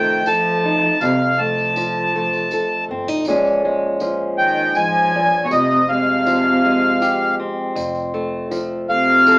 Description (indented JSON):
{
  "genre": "acoustic folk duo or small band",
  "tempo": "80 BPM",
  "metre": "3/4",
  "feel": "straight",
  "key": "unclear",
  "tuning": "A4 = 438 Hz",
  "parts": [
    { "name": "accordion", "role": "melody", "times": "0.0-9.4 s", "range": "Db5 to A5", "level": "-16 LUFS", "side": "equal", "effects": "none" },
    { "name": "dark cello", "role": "second line", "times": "0.0-9.4 s", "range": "Bb2 to F3", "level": "-22 LUFS", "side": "equal", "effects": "none" },
    { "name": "fingerpicked acoustic archtop guitar", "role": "accompaniment", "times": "0.0-9.4 s", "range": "F2 to A4", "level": "-20 LUFS", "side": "equal", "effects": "none" },
    { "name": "upright bass", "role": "bass", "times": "0.0-9.2 s", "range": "F1 to C2", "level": "-35 LUFS", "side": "equal", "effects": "none" },
    { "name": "tambourine", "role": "percussion", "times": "0.3-9.4 s", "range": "none", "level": "-38 LUFS", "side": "right 1 dB", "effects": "none" }
  ],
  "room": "wet studio reverb, RT60 0.5 s",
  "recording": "band playing live in one room, AM radio sound",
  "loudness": "-15 LUFS",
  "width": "side -26 dB against mid",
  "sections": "0.0-9.4 A section",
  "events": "none",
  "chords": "0.0 F7; 3.3 Bbm7; 5.5 Fmadd9; 7.8 F",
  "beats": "0.26 | 1.01 1.76 2.51 | 3.26 4.01 4.76 | 5.51 6.26 7.02 | 7.77 8.52 9.27"
}